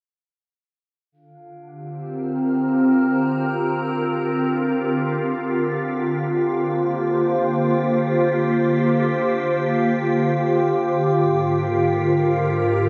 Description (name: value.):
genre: ambient.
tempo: free time.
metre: none.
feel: none.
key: unclear.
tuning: A4 = 441 Hz.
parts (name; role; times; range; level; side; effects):
soft additive organ-like pad; sustained chords; 1.9-12.9 s; Ab2 to C5; -21 LUFS; equal; ensemble chorus, built-in reverb.
glass harmonica; texture; 1.1-12.9 s; F4 to F5; -32 LUFS; equal; none.
room: wet huge ambient reverb, RT60 8.3 s.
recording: none.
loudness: -20 LUFS.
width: mono.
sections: 1.1-12.9 A section.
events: fade-in on glass harmonica 1.1-12.9.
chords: 1.1 Bb; 11.1 Ab6.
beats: free time.